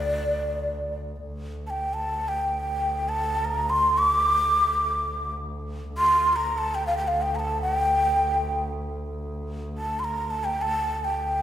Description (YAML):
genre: Arabic maqam ensemble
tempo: free time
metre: none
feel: none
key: D maqam bayati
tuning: A4 = 439 Hz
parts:
  - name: breathy mellow ney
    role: melody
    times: 0.0-11.4 s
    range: D5 to D6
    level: -23 LUFS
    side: equal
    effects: none
  - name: rich double bass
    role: drone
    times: 0.0-11.4 s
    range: D2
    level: -32 LUFS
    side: equal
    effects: none
room: wet recital hall reverb, RT60 1.7 s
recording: recorded in a church or concert hall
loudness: -23 LUFS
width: side -11 dB against mid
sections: 0.0-1.2 A section; 1.2-11.4 A section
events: none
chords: none